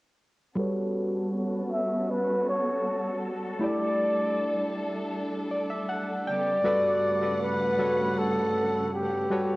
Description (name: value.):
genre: R&B.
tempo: 79 BPM.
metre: 4/4.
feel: straight.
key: unclear.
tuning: A4 = 439 Hz.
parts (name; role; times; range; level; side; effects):
soft electric-piano-like synth keys; accompaniment; 0.6-9.6 s; G3 to G5; -30 LUFS; equal; chorus, low-pass filter, cassette tape.
warm studio string section; sustained chords; 0.6-9.6 s; G2 to F#5; -32 LUFS; equal; low-pass filter, cassette tape.
breathy flugelhorn; melody; 1.7-9.6 s; G4 to E5; -27 LUFS; equal; low-pass filter, cassette tape, analog delay.
room: moderate spring reverb, RT60 2.3 s.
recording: home recording on cassette.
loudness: -25 LUFS.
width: side -20 dB against mid.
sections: 0.6-6.6 A section; 6.6-9.6 B section.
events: filter sweep 0.6-6.6; synth keys fill 5.1-6.6.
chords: 0.6 Gmaj9#11; 3.6 A7sus4; 6.3 Gadd9; 6.6 Gmaj9#11.